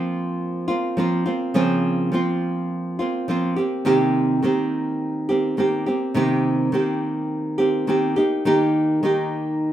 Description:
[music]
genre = pop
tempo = 104 BPM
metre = 4/4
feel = swing 55% on 16ths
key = unclear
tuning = A4 = 438 Hz
[part]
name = nylon-string guitar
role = solo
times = 0.0-9.7 s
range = C3 to G4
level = -19 LUFS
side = right 1 dB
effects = none
[sound]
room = wet studio reverb, RT60 0.6 s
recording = rough home demo mix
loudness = -19 LUFS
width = side -11 dB against mid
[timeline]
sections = 0.0-9.7 A section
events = none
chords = 0.0 Bbmadd9; 3.6 Cm7; 8.2 Eb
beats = 0.39 0.97 | 1.55 2.12 2.70 3.28 | 3.85 4.43 5.01 5.58 | 6.16 6.74 7.31 7.89 | 8.46 9.04 9.62

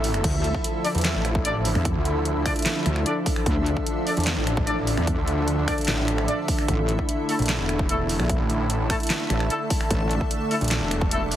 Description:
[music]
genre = heavy wobble dubstep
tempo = 149 BPM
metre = 4/4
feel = half-time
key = D minor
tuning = A4 = 442 Hz
[part]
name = supersaw pad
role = sustained chords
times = 0.0-11.4 s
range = D3 to E4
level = -29 LUFS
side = right 1 dB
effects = sidechain pumping, low-pass filter
[part]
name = snarling distorted saw bass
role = bass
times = 0.0-11.4 s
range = E1 to E2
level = -26 LUFS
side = equal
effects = distortion, overdrive
[part]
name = dubstep drum kit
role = drums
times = 0.0-11.4 s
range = crash cymbal, finger snaps, handclaps, hi-hat, snare drum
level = -28 LUFS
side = equal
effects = overdrive
[part]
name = granular cloud pad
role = texture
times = 0.0-11.4 s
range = D4 to A5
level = -30 LUFS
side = equal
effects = built-in reverb, sidechain pumping
[part]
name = wobble bass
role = bass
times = 0.2-10.2 s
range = A1 to E2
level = -24 LUFS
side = equal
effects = chorus, overdrive
[part]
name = electronic kick drum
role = drums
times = 0.2-11.1 s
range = none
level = -26 LUFS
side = equal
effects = overdrive
[part]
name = warm brass ensemble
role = stabs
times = 0.8-11.2 s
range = A3 to D5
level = -31 LUFS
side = left 2 dB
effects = dub echo
[sound]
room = light reverb, digital ambience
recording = heavily compressed radio sound, multiband compression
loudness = -21 LUFS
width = side -11 dB against mid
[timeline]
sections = 0.0-11.4 A section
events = break 0.0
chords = 0.2 Dmadd9; 6.7 Asus4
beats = | 0.24 0.64 1.05 1.45 | 1.85 2.25 2.66 3.06 | 3.46 3.87 4.27 4.67 | 5.07 5.48 5.88 6.28 | 6.68 7.09 7.49 7.89 | 8.29 8.70 9.10 9.50 | 9.91 10.31 10.71 11.11

